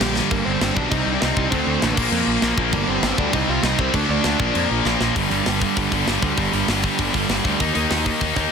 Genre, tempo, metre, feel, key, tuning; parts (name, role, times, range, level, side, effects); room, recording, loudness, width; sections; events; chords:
punk rock; 198 BPM; 4/4; straight; G minor; A4 = 438 Hz
dark smooth lead guitar; melody; 0.0-4.7 s; Bb3 to G5; -25 LUFS; equal; overdrive, digital delay
sludgy distorted guitar; riff; 0.0-8.5 s; G2 to Eb4; -25 LUFS; right 14 dB; overdrive
tight distorted guitar; riff; 0.0-8.5 s; G2 to Eb4; -24 LUFS; left 15 dB; distortion
tight distorted guitar; riff; 0.0-0.3, 2.7-8.5 s; G2 to Eb4; -26 LUFS; equal; distortion
fuzz picked electric bass; bass; 0.0-8.5 s; G1 to F2; -25 LUFS; left 1 dB; overdrive
tight metal drum kit; drums; 0.0-8.4 s; crash cymbal, hi-hat, kick drum, snare drum; -24 LUFS; equal; soft clipping on kick
light reverb; dense, heavily limited modern master; -18 LUFS; side -6 dB against mid
0.3-5.2 A section; 5.2-8.5 B section
drum fill 0.2, 4.9-5.2
0.3 Gm; 0.9 Cm; 1.5 D5; 2.0 Bb5; 2.7 Gm; 3.3 Cm; 3.9 D5; 4.4 Bb; 5.2 G5; 7.6 Eb5